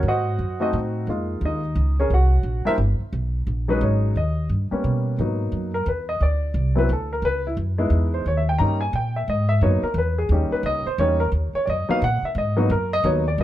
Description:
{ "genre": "jazz", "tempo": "175 BPM", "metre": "3/4", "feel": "swing 62% on 8ths", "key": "G# minor", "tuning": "A4 = 440 Hz", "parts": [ { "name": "warm baby grand piano", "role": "melody", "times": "0.0-13.4 s", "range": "F#3 to A#5", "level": "-23 LUFS", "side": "equal", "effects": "plate reverb" }, { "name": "upright bass", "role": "bass", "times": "0.0-13.4 s", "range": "G1 to B2", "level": "-22 LUFS", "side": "equal", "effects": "none" } ], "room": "light reverb", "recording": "close, detailed microphones", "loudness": "-20 LUFS", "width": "side -13 dB against mid", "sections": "0.0-5.2 A section; 5.2-13.4 B section", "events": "grand piano solo 5.2-13.4", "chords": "0.0 G#7b9; 1.1 C#6; 2.1 C7(no3); 3.1 B6; 4.2 D#7b13; 5.2 G#m7; 6.2 D7(no3); 7.2 C#m7; 8.3 D#7; 9.3 G#m9; 10.3 D#7; 11.3 G#m7" }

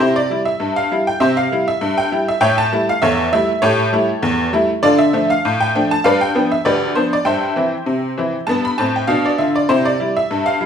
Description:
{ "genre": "ragtime piano", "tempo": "99 BPM", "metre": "2/4", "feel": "swing 54% on 16ths", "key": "C major", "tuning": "A4 = 440 Hz", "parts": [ { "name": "tack piano", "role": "solo", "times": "0.0-10.7 s", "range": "D2 to B5", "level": "-14 LUFS", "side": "equal", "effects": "none" } ], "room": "wet large studio reverb, RT60 0.9 s", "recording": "band playing live in one room", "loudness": "-14 LUFS", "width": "side -8 dB against mid", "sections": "0.0-10.7 A section", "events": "none", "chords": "0.0 C; 2.4 A7; 4.8 Dm; 6.0 G7; 7.2 C/G; 8.5 G; 9.7 C" }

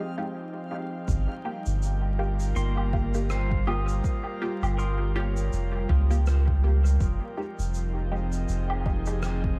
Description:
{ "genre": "ambient dub", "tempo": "81 BPM", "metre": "4/4", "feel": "swing 57% on 16ths", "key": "unclear", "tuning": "A4 = 440 Hz", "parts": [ { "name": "airy breathy pad", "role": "sustained chords", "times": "0.0-9.6 s", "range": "F3 to G5", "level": "-37 LUFS", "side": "equal", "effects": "chorus" }, { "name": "filtered dub chord stab", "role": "stabs", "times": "0.0-9.3 s", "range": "Ab3 to G4", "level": "-39 LUFS", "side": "equal", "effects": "phaser, subtle chorus, dub echo" }, { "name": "backwards swelling texture", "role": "texture", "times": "0.0-1.1 s", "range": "F5", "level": "-52 LUFS", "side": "equal", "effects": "built-in reverb" }, { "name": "soft dub sub bass", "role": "bass", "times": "1.1-9.6 s", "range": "F1 to Db2", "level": "-27 LUFS", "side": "equal", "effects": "none" }, { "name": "electronic kick drum", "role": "drums", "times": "1.1-9.6 s", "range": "none", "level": "-31 LUFS", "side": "equal", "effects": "overdrive" }, { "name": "shaker, woodblock and rim click", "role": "drums", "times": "1.1-9.4 s", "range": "none", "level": "-42 LUFS", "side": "equal", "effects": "dub echo" }, { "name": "pedal steel guitar", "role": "arpeggios", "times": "2.6-7.2 s", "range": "Bb3 to Eb6", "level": "-40 LUFS", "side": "equal", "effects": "dub echo" } ], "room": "digital ambience", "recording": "echo-heavy mix, vinyl crackle", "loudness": "-27 LUFS", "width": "mono", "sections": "0.0-1.1 A section; 1.1-9.6 B section", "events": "none", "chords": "0.0 Fm9; 1.1 Gm7b5; 7.0 Fm9" }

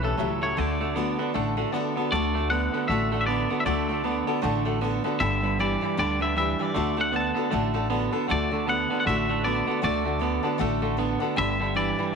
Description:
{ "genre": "rockabilly", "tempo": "156 BPM", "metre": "4/4", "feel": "swing 59% on 8ths", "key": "D major", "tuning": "A4 = 440 Hz", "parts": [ { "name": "twangy electric guitar", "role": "melody", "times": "0.0-12.1 s", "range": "A4 to A5", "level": "-28 LUFS", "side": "left 1 dB", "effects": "spring reverb, tape echo" }, { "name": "honky-tonk upright piano", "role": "accompaniment", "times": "0.0-12.2 s", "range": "C#5 to B5", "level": "-34 LUFS", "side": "left 11 dB", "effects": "none" }, { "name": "picked steel-string acoustic guitar", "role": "accompaniment", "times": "0.0-12.1 s", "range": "A2 to B4", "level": "-31 LUFS", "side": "left 12 dB", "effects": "none" }, { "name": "clean electric guitar", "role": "riff", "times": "0.0-12.1 s", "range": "G2 to B3", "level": "-28 LUFS", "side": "right 12 dB", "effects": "none" }, { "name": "upright bass", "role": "bass", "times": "0.0-11.9 s", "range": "G1 to D2", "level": "-30 LUFS", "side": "left 1 dB", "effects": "none" } ], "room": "moderate plate reverb, RT60 2.6 s", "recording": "1960s-style stereo with parts hard left and right", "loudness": "-23 LUFS", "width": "side -6 dB against mid", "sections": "0.0-2.1 A section; 2.1-12.2 B section", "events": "honky-tonk piano fill 10.6-11.4", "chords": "0.0 A7; 0.6 D; 5.2 G; 6.8 D; 11.4 G" }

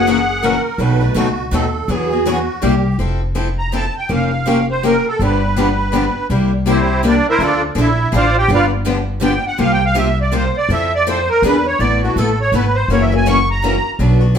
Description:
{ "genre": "acoustic string swing (jazz manouche)", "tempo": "164 BPM", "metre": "3/4", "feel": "swing 61% on 8ths", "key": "F major", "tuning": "A4 = 438 Hz", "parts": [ { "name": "musette accordion", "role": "melody", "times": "0.0-0.6, 3.6-13.9 s", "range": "C4 to C#6", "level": "-17 LUFS", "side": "right 1 dB", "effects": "plate reverb" }, { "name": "musette accordion", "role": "second line", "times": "0.0-3.0 s", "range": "F#4 to B4", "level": "-23 LUFS", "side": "right 5 dB", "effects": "none" }, { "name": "picked steel-string acoustic guitar", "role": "accompaniment", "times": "0.0-14.4 s", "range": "B2 to A4", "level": "-19 LUFS", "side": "left 4 dB", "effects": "none" }, { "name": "upright bass", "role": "bass", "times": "0.0-14.4 s", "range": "F1 to F2", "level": "-18 LUFS", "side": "equal", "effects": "none" }, { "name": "picked steel-string acoustic guitar", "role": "accompaniment", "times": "0.1-14.2 s", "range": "B2 to B4", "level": "-23 LUFS", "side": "right 1 dB", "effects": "none" } ], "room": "wet studio reverb, RT60 0.7 s", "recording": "heard from further back in the room", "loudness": "-13 LUFS", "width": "side -8 dB against mid", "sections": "0.0-3.0 A section; 3.0-11.8 B section; 11.8-14.4 B section", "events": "accordion solo 3.0-14.4", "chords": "0.0 F#7; 0.8 B7; 1.9 Eadd9; 2.6 C7; 3.0 Fmaj7; 4.1 Bbm6/F; 5.2 G7; 6.3 C7; 7.4 Dm7; 8.5 G7; 9.6 C7sus4; 10.7 Fmaj7; 11.4 E7; 11.8 Asus2; 12.9 F#7" }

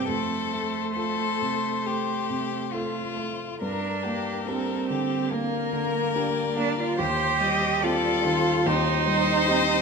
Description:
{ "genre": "classical, slow romantic movement for piano quartet", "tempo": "67-74 BPM", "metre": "4/4", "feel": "rubato", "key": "unclear", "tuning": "A4 = 440 Hz", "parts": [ { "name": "rich violin", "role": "melody", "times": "0.0-9.8 s", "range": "F4 to C5", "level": "-29 LUFS", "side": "left 10 dB", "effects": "none" }, { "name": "clear violin", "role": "second line", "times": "0.0-9.8 s", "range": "G4 to G5", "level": "-32 LUFS", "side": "left 4 dB", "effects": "none" }, { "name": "rich cello", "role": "second line", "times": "0.0-9.8 s", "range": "A3 to G4", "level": "-26 LUFS", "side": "right 5 dB", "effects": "none" }, { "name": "warm grand piano", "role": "accompaniment", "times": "0.0-9.8 s", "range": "C2 to A4", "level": "-30 LUFS", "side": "left 1 dB", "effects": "none" } ], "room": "wet recital hall reverb, RT60 1.6 s", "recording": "none", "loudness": "-23 LUFS", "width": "side -5 dB against mid", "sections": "0.0-9.8 A section", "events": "none", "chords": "0.1 F; 3.6 Gm; 7.0 Cm/Eb" }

